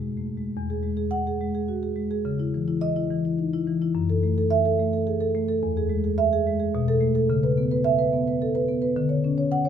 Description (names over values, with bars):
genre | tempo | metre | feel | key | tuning
classical, contemporary piece for solo marimba | 107 BPM | 3/4 | rubato | E major | A4 = 441 Hz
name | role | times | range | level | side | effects
marimba with soft mallets | solo | 0.0-9.7 s | E2 to F#5 | -22 LUFS | equal | none
room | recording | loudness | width
light reverb | close, detailed microphones | -22 LUFS | side -8 dB against mid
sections
0.6-9.7 A section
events
none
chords
0.0 E; 0.6 Eadd9; 2.2 C#madd9; 3.9 F#m7; 5.6 E; 6.7 Asus2/B; 7.3 C#m7; 9.0 Dmaj7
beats
| 0.56 1.13 1.69 | 2.25 2.82 3.38 | 3.94 4.50 5.06 | 5.62 6.18 6.74 | 7.29 7.85 8.40 | 8.95 9.51